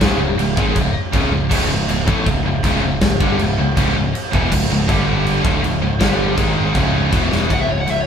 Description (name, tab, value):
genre	heavy metal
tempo	160 BPM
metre	4/4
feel	straight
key	C# minor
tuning	A4 = 440 Hz
part	heavy high-gain guitar	riff	0.0-8.0 s	C#2 to A3	-24 LUFS	left 7 dB	distortion
part	overdriven electric guitar	riff	0.0-7.5 s	C#2 to A3	-22 LUFS	right 1 dB	none
part	scooped high-gain guitar	riff	0.0-8.0 s	C#2 to A3	-24 LUFS	right 5 dB	distortion
part	growling picked electric bass	bass	0.0-8.1 s	C#1 to A1	-21 LUFS	equal	overdrive
part	big rock drum kit	drums	0.0-8.0 s	china cymbal, crash cymbal, kick drum, snare drum	-19 LUFS	equal	none
part	high-gain lead guitar	melody	7.5-8.1 s	C#5 to F#5	-20 LUFS	left 2 dB	distortion
room	light reverb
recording	band playing live in one room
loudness	-15 LUFS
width	side -7 dB against mid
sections	0.0-7.5 A section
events	half time 0.0-7.5; drum fill 7.3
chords	0.0 C#m; 4.9 G5; 5.4 C#5; 6.0 G5; 6.4 G#5; 6.8 C#5; 7.1 E5; 7.5 C#5